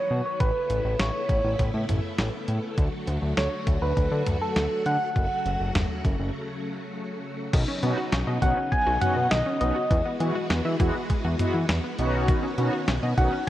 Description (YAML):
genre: synth-pop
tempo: 101 BPM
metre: 4/4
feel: straight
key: B mixolydian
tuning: A4 = 440 Hz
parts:
  - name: soft struck synth lead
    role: melody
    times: 0.0-13.5 s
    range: A4 to G#5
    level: -27 LUFS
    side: equal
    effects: chorus
  - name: string machine, violins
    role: sustained chords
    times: 0.0-13.5 s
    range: C#3 to F#4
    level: -33 LUFS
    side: equal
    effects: ensemble chorus
  - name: fat analog bass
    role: bass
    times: 0.1-13.3 s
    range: F#1 to E3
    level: -27 LUFS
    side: equal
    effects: none
  - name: detuned 8-bit digital drum machine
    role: drums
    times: 0.4-13.3 s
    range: crash cymbal, hi-hat, kick drum, snare drum, toms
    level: -26 LUFS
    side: equal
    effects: none
  - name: wide unison pluck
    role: arpeggios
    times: 7.5-13.4 s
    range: D#3 to E5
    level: -33 LUFS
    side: left 1 dB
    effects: ping-pong delay
  - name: mellow synth brass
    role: accompaniment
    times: 7.8-13.3 s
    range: G#3 to F#4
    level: -29 LUFS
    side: equal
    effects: chorus
room: moderate plate reverb, RT60 2.1 s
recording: worn, warbling old tape, cassette tape, warbly pitch drift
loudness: -23 LUFS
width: side -14 dB against mid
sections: 0.0-7.5 A section; 7.5-13.5 B section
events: break 6.3-7.5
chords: 0.4 Aadd9; 2.8 D; 5.2 F#m; 7.5 Badd9; 9.9 Eadd9; 12.0 Badd9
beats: | 0.40 1.00 1.59 2.19 | 2.78 3.37 3.97 4.56 | 5.16 5.75 6.34 6.94 | 7.53 8.12 8.72 9.31 | 9.91 10.50 11.10 11.69 | 12.28 12.88 13.47